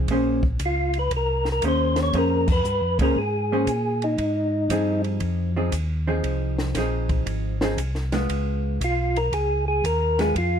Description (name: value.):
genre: soul jazz organ trio.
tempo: 117 BPM.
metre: 4/4.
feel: swing 67% on 8ths.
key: F minor.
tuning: A4 = 440 Hz.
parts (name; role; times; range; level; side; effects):
vintage hollow-body jazz guitar; accompaniment; 0.0-10.3 s; F3 to C5; -25 LUFS; right 1 dB; none.
mellow tonewheel organ; bass; 0.0-10.6 s; Ab1 to Bb2; -25 LUFS; equal; slow rotary speaker.
compact cocktail drum kit; drums; 0.1-10.5 s; crash cymbal, hi-hat, kick drum, ride cymbal, snare drum; -29 LUFS; equal; none.
percussive tonewheel organ; melody; 0.7-5.0, 8.8-10.6 s; Eb4 to Db5; -23 LUFS; equal; slow rotary speaker, plate reverb.
room: light reverb.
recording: dark, warm production.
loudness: -21 LUFS.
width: side -8 dB against mid.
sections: 0.0-10.6 A section.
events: band accent 2.4.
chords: 0.1 Bbm9; 4.2 Fm7; 8.3 Db7.